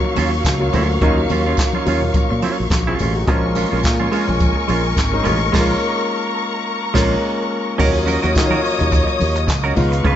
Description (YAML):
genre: disco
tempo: 106 BPM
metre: 4/4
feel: swing 56% on 16ths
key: Eb minor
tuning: A4 = 440 Hz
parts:
  - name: semi-hollow electric guitar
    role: accompaniment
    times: 0.0-10.2 s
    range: Gb3 to Cb5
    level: -24 LUFS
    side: right 6 dB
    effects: none
  - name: warm grand piano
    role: accompaniment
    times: 0.0-10.2 s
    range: Gb3 to Bb4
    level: -22 LUFS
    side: left 2 dB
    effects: none
  - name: warm studio string section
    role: sustained chords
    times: 0.0-10.2 s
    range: Gb3 to Eb6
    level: -22 LUFS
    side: left 2 dB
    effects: none
  - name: fingered electric bass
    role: bass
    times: 0.2-10.2 s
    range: Ab1 to Eb3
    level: -20 LUFS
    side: equal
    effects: none
  - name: jazz brush drum kit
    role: drums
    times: 0.2-10.2 s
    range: crash cymbal, handclaps, hi-hat, kick drum, snare drum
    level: -21 LUFS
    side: equal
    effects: none
  - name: congas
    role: percussion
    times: 0.2-10.2 s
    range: none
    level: -28 LUFS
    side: left 3 dB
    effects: none
  - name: tambourine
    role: percussion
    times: 0.2-9.9 s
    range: none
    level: -37 LUFS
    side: right 6 dB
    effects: none
room: light reverb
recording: nothing above 7.8 kHz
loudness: -15 LUFS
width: side -10 dB against mid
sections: 0.0-7.8 A section; 7.8-10.2 B section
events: band accent 5.5-7.8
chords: 0.0 Ebm9; 3.3 Bbm7; 7.8 Ebm7